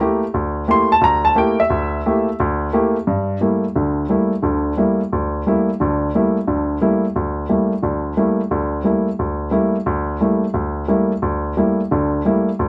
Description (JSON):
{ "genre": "jazz", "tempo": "176 BPM", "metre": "4/4", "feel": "swing 64% on 8ths", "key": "G dorian", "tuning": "A4 = 439 Hz", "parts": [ { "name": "dark baby grand piano", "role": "solo", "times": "0.0-12.7 s", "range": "D2 to C6", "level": "-18 LUFS", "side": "equal", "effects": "none" } ], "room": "light reverb", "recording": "none", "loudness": "-18 LUFS", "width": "mono", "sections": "0.0-3.1 A section; 3.1-12.7 B section", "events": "none", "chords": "0.0 Gm69", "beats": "0.00 | 0.34 0.68 1.02 1.36 | 1.70 2.04 2.38 2.72 | 3.06 3.40 3.74 4.08 | 4.42 4.76 5.10 5.44 | 5.78 6.12 6.46 6.80 | 7.14 7.49 7.83 8.17 | 8.51 8.85 9.19 9.53 | 9.87 10.21 10.55 10.89 | 11.23 11.57 11.91 12.25 | 12.59" }